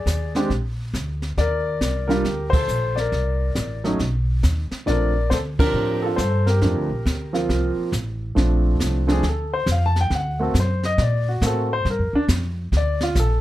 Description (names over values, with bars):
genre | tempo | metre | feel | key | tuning
jazz piano trio | 137 BPM | 4/4 | swing 65% on 8ths | Bb major | A4 = 439 Hz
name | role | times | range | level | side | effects
warm concert grand piano | melody | 0.0-13.4 s | F3 to A5 | -23 LUFS | equal | none
upright bass | bass | 0.0-13.4 s | A1 to Bb2 | -22 LUFS | equal | none
jazz brush drum kit | drums | 0.1-13.4 s | brushed snare drum, hi-hat, kick drum, ride cymbal, snare drum | -26 LUFS | right 1 dB | none
room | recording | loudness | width
little or no reverb | close, detailed microphones | -19 LUFS | side -15 dB against mid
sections
0.0-8.4 A section; 8.4-13.4 B section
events
band accent 2.5, 5.5; grand piano solo 8.4-13.4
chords
0.5 Bb; 1.4 Ebmaj7; 3.1 C7(no3); 4.0 B; 4.9 Bbmaj9; 10.1 D7b13; 11.8 Gm7 (rootless)